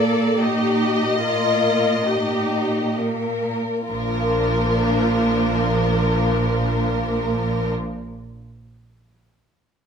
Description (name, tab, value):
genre	classical, slow romantic movement for string orchestra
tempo	free time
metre	none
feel	none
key	Bb major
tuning	A4 = 436 Hz
part	warm symphonic violin section	melody	0.0-7.7 s	Bb4 to Eb5	-25 LUFS	left 3 dB	none
part	warm symphonic violin section	second line	0.0-7.7 s	Bb3 to Bb4	-25 LUFS	left 1 dB	none
part	clear symphonic viola section	accompaniment	0.0-7.7 s	F3 to A4	-25 LUFS	left 1 dB	none
part	rich symphonic cello section	bass	0.0-7.7 s	Bb2	-24 LUFS	right 2 dB	none
part	rich symphonic double bass section	bass	3.9-7.7 s	Bb1	-24 LUFS	right 2 dB	none
room	moderate large studio reverb, RT60 1.3 s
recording	minimal, uncompressed stereo recording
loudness	-18 LUFS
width	side -7 dB against mid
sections	0.0-3.9 A section; 3.9-9.9 B section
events	slowing down 0.0-3.9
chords	0.0 Eb/Bb; 3.9 Bb